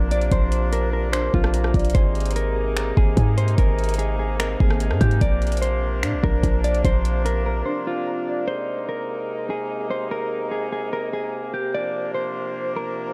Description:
hip hop, atmospheric cloud-rap; 147 BPM; 4/4; half-time; Ab lydian; A4 = 441 Hz
mellow electric guitar; melody; 0.0-13.1 s; F4 to D5; -30 LUFS; equal; spring reverb, tape echo
warm woodwind section; sustained chords; 0.0-13.1 s; C3 to Eb4; -32 LUFS; equal; sidechain pumping
concert harp; arpeggios; 0.0-10.9 s; Bb3 to Bb5; -34 LUFS; equal; tape echo
warm 808-style bass; bass; 0.0-7.6 s; Ab1 to Bb2; -24 LUFS; equal
smooth R&B drum kit; drums; 0.1-7.4 s; finger snaps, hi-hat, kick drum, rim click; -25 LUFS; equal
little or no reverb; dark, warm production; -22 LUFS; mono
0.0-8.5 A section; 8.5-13.1 B section
break 7.7-8.5
0.0 Bbadd9; 1.9 Abadd9; 5.2 Bbadd9; 8.5 Abadd9; 11.7 Bbadd9

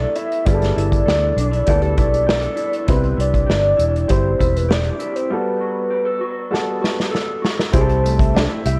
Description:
indie pop, bedroom pop; 99 BPM; 4/4; straight; G major; A4 = 439 Hz
soft octave-layered synth lead; melody; 0.0-8.8 s; B4 to E5; -23 LUFS; equal; lush chorus
electric guitar through a small old amp; accompaniment; 0.0-8.8 s; C3 to A4; -29 LUFS; equal; subtle chorus, vibrato effect
warm upright piano; accompaniment; 0.0-8.8 s; G3 to C5; -28 LUFS; equal; cassette tape
vintage muted fingered electric bass; bass; 0.0-8.8 s; E1 to D2; -22 LUFS; equal; transformer saturation
unplugged drum kit; drums; 0.2-8.8 s; hi-hat, kick drum, snare drum; -22 LUFS; equal
vibraphone with soft mallets; second line; 7.7-8.5 s; A4 to E5; -27 LUFS; equal; subtle chorus, analog delay
light reverb; worn, warbling old tape, cassette tape, warbly pitch drift; -18 LUFS; mono
0.0-7.7 A section; 7.7-8.8 B section
break 5.3-7.7; drum fill 6.5-7.7
0.0 G69; 2.9 Cmaj7; 5.3 Gmaj9; 7.7 C6

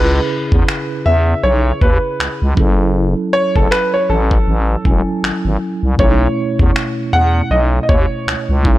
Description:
contemporary R&B; 79 BPM; 4/4; swing 58% on 16ths; A4 = 440 Hz
warm concert grand piano; melody; 0.0-8.6 s; A4 to F#5; -18 LUFS; right 1 dB
mellow tine electric piano; accompaniment; 0.0-8.8 s; B2 to G#5; -21 LUFS; right 1 dB; medium stereo tremolo
growling FM bass; bass; 0.0-8.8 s; E1 to E2; -15 LUFS; equal
dusty soul sampler-style drum kit; drums; 0.5-8.8 s; finger snaps, kick drum; -16 LUFS; equal
little or no reverb; dry, gritty hardware recording; -12 LUFS; side -16 dB against mid
0.0-8.8 A section
0.0 C#m7; 2.6 F#m7; 6.0 B9sus4

